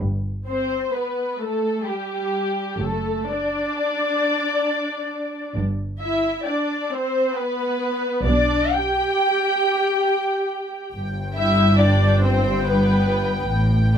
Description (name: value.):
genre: classical, slow romantic movement for string orchestra.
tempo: 60-71 BPM.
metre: 3/4.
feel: rubato.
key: G major.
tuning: A4 = 440 Hz.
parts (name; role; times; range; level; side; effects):
muted symphonic cello section; bass; 0.0-14.0 s; F#2 to B2; -23 LUFS; equal; none.
muted symphonic double bass section; bass; 0.0-14.0 s; F#1 to B1; -23 LUFS; equal; none.
muted studio violin section; second line; 0.5-14.0 s; G4 to G5; -22 LUFS; left 1 dB; none.
muted symphonic viola section; accompaniment; 0.5-14.0 s; G3 to G4; -26 LUFS; equal; none.
muted symphonic violin section; melody; 0.9-14.0 s; G5 to B5; -31 LUFS; left 2 dB; none.
room: little or no reverb.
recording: close, detailed microphones.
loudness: -19 LUFS.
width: side -8 dB against mid.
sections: 0.0-14.0 A section.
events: none.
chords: 0.0 G; 2.8 D/F#; 5.6 G; 8.3 G/B; 10.9 G.